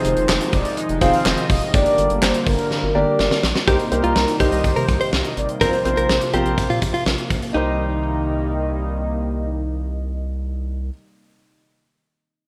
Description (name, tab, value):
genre	synth-pop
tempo	124 BPM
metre	4/4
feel	straight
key	C minor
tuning	A4 = 439 Hz
part	mellow synth brass	melody	0.0-10.9 s	G4 to F5	-27 LUFS	equal	chorus, digital delay
part	clear grand piano	accompaniment	0.0-10.9 s	Bb3 to D5	-26 LUFS	equal	none
part	chorused pulse-width pad	sustained chords	0.0-10.9 s	C3 to Eb4	-28 LUFS	equal	none
part	round analog bass	bass	0.0-10.9 s	F1 to C3	-27 LUFS	equal	none
part	gated 80s drum kit	drums	0.0-7.5 s	handclaps, hi-hat, kick drum, snare drum	-24 LUFS	equal	none
part	direct-recorded clean electric guitar	second line	3.7-9.0 s	Eb4 to C5	-27 LUFS	equal	digital delay
room	moderate digital room reverb, RT60 1.1 s, studio ambience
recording	rough home demo mix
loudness	-20 LUFS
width	mono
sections	0.0-3.7 A section; 3.7-7.5 B section; 7.5-11.4 C section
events	drum fill 2.7-3.7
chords	0.0 Fm7; 1.7 Gm; 3.7 Cm7; 5.6 Bbsus2; 7.5 Cm7